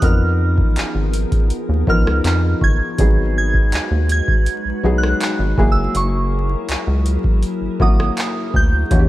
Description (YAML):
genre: contemporary R&B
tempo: 81 BPM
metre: 4/4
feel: straight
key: unclear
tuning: A4 = 438 Hz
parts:
  - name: soft synth bell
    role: melody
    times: 0.0-9.1 s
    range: C#6 to G#6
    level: -24 LUFS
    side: right 2 dB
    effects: chorus, slapback echo
  - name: felt-muted upright piano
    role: accompaniment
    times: 0.0-9.1 s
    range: E3 to A#4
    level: -23 LUFS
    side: left 1 dB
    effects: none
  - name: glassy FM pad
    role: sustained chords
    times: 0.0-9.1 s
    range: E3 to B4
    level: -27 LUFS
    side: left 1 dB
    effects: ensemble chorus, built-in reverb
  - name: rubbery square bass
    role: bass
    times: 0.0-9.1 s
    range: F#1 to E#2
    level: -18 LUFS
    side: equal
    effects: none
  - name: booming analog drum machine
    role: drums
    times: 0.0-9.1 s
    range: handclaps, hi-hat, kick drum, rim click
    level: -17 LUFS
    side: equal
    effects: none
  - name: celesta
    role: texture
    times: 2.6-6.5 s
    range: G#5 to C#6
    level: -33 LUFS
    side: right 2 dB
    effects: slapback echo
room: little or no reverb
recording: vinyl crackle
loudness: -15 LUFS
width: side -16 dB against mid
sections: 0.0-9.1 A section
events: none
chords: 0.0 C#13; 3.0 G#m7; 5.6 F#9